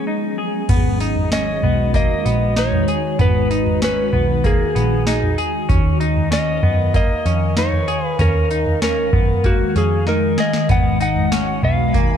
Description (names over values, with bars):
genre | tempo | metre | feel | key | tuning
dream pop | 96 BPM | 4/4 | straight | G# dorian | A4 = 440 Hz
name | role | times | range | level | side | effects
electric slide guitar | melody | 0.0-12.2 s | F#4 to F#5 | -22 LUFS | right 1 dB | ping-pong delay
ethereal airy pad | sustained chords | 0.0-12.2 s | D#3 to E#5 | -22 LUFS | left 1 dB | ensemble chorus, built-in reverb
semi-hollow electric guitar | arpeggios | 0.0-12.2 s | A#3 to G#4 | -24 LUFS | left 2 dB | wide subtle chorus, ping-pong delay
vintage muted picked electric bass | bass | 0.7-12.1 s | G#1 to F#2 | -20 LUFS | equal | none
booming analog drum machine | drums | 0.7-12.1 s | crash cymbal, kick drum, snare drum, tambourine, toms | -20 LUFS | equal | none
twinkling granular texture | texture | 11.9-12.2 s | G#5 to C#6 | -33 LUFS | right 10 dB | built-in reverb
room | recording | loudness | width
light reverb, digital ambience | dark, warm production | -15 LUFS | side -8 dB against mid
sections
0.7-12.2 A section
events
drum fill 10.1-10.7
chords
0.0 C#7sus4; 0.7 G#m7; 5.7 D#madd9; 10.7 G#m7